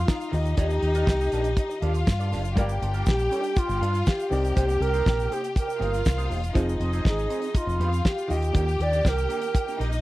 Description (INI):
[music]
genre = disco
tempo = 120 BPM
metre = 4/4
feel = straight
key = unclear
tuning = A4 = 440 Hz
[part]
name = mellow alto flute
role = melody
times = 0.0-9.8 s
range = Eb4 to D5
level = -27 LUFS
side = right 1 dB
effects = none
[part]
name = clear studio string section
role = second line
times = 0.0-10.0 s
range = Eb4 to G5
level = -33 LUFS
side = left 3 dB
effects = none
[part]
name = clear baby grand piano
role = accompaniment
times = 0.0-10.0 s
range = C3 to F5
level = -35 LUFS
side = left 1 dB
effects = none
[part]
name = fingered electric bass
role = bass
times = 0.0-10.0 s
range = E1 to G2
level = -26 LUFS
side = equal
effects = none
[part]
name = mellow electric guitar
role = accompaniment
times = 0.1-10.0 s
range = Bb3 to D5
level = -37 LUFS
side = right 5 dB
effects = wah, spring reverb
[part]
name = damped 70s drum kit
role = drums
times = 0.1-10.0 s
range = hi-hat, kick drum, snare drum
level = -23 LUFS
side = equal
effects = none
[part]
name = tube shaker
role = percussion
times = 0.1-10.0 s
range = none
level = -49 LUFS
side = right 14 dB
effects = none
[sound]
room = little or no reverb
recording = dry, close 1970s-style studio recording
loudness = -22 LUFS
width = side -17 dB against mid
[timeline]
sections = 0.0-10.0 A section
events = none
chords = 0.3 Ebmaj7; 2.6 Gm7; 4.3 Cm7; 6.6 Fm7; 8.3 Ebmaj7